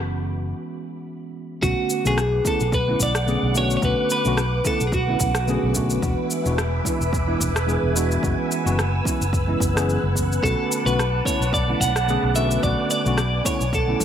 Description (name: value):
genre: sunset chillout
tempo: 109 BPM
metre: 4/4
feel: swing 55% on 16ths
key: B dorian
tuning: A4 = 440 Hz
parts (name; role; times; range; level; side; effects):
- tine electric piano; accompaniment; 0.0-14.0 s; D3 to B4; -26 LUFS; equal; auto-pan, ping-pong delay
- soft string machine; sustained chords; 0.0-14.0 s; F#4 to E6; -29 LUFS; equal; phaser, ensemble chorus
- fretless electric bass; bass; 0.0-14.0 s; E1 to B1; -24 LUFS; equal; none
- twelve-string electric guitar; melody; 1.6-5.7, 10.4-14.0 s; F#4 to F#5; -24 LUFS; right 1 dB; ping-pong delay
- electronic kick drum; drums; 1.6-14.0 s; none; -27 LUFS; equal; overdrive, studio ambience
- electronic shaker and rim click; drums; 1.6-14.0 s; none; -29 LUFS; left 1 dB; studio ambience
room: moderate plate reverb, RT60 2.0 s, digital ambience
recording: bright 1980s-style digital production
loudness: -19 LUFS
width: side -9 dB against mid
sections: 0.0-1.6 A section; 1.6-14.0 B section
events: break 0.5-1.6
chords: 0.0 F#9sus4; 1.6 Bm7; 6.0 E7; 8.2 F#9sus4; 10.4 Bm7